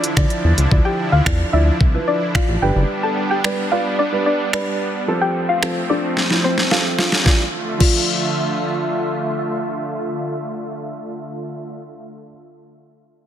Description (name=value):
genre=dance-pop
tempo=110 BPM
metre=4/4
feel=straight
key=D dorian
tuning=A4 = 440 Hz
part: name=warm baby grand piano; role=accompaniment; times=0.0-12.3 s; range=E3 to D5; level=-24 LUFS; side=right 2 dB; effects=sidechain pumping, low-pass filter
part: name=supersaw pad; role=sustained chords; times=0.0-11.7 s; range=D3 to E5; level=-24 LUFS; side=equal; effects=sidechain pumping, low-pass filter
part: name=smooth R&B drum kit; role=drums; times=0.0-8.0 s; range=crash cymbal, finger snaps, hi-hat, kick drum, snare drum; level=-18 LUFS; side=equal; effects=soft clipping on snare
part: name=chorused synth bass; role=bass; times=0.2-2.8 s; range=F#1 to D3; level=-17 LUFS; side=equal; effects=sidechain pumping
part: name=soft round pluck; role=melody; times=0.8-8.9 s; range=C4 to A5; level=-22 LUFS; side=left 1 dB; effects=chorus, sidechain pumping, low-pass filter, ping-pong delay
room=moderate lush hall reverb, RT60 2.0 s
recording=dense, heavily limited modern master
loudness=-16 LUFS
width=side -10 dB against mid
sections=0.0-7.3 A section; 7.3-11.6 B section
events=drum fill 6.2-7.3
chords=0.0 Dmadd9; 2.6 G; 5.1 F; 7.3 Dmadd9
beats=0.17 | 0.71 1.26 1.80 2.35 | 2.90 3.44 3.99 4.53 | 5.08 5.62 6.17 6.71 | 7.26 7.80 8.35 8.90 | 9.44 9.99 10.53 11.08